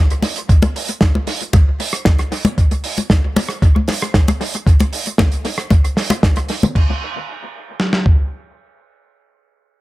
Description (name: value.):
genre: nu-disco.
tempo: 115 BPM.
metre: 4/4.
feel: straight.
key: none.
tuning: none.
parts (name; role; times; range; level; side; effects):
damped 70s drum kit; drums; 0.1-6.9 s; crash cymbal, hi-hat, rim click, snare drum; -20 LUFS; right 2 dB; dub echo.
congas; percussion; 0.2-6.7 s; none; -19 LUFS; left 2 dB; dub echo.
dusty soul sampler-style drum kit; drums; 0.5-8.2 s; kick drum, snare drum; -13 LUFS; equal; none.
room: small room ambience.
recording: echo-heavy mix.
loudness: -14 LUFS.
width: side -18 dB against mid.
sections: 0.0-6.8 A section; 6.8-9.8 B section.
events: drop 0.0-6.8.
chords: none.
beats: | 0.49 1.01 1.54 2.06 | 2.58 3.10 3.62 4.14 | 4.67 5.19 5.71 6.23 | 6.75 7.28 7.80.